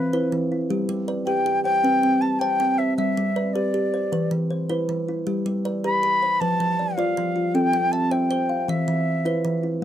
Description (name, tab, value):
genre	southern african traditional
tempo	105 BPM (dotted quarters)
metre	12/8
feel	straight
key	unclear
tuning	A4 = 441 Hz
part	mellow jazz flute	melody	0.0-9.6 s	B4 to B5	-23 LUFS	left 1 dB	none
part	kalimba	arpeggios	0.0-9.8 s	E3 to A5	-24 LUFS	left 1 dB	none
part	kalimba	arpeggios	0.0-9.8 s	E3 to A5	-27 LUFS	right 4 dB	none
room	little or no reverb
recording	dry, close 1970s-style studio recording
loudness	-20 LUFS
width	side -10 dB against mid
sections	0.0-9.8 A section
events	none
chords	0.0 E5; 0.7 G; 1.8 C5; 3.0 G; 4.1 E5; 5.3 G; 6.4 F; 7.5 C; 8.7 E5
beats	0.13 | 0.70 1.27 1.84 2.41 | 2.98 3.56 4.13 4.70 | 5.27 5.84 6.41 6.98 | 7.55 8.12 8.69 9.26 | 9.83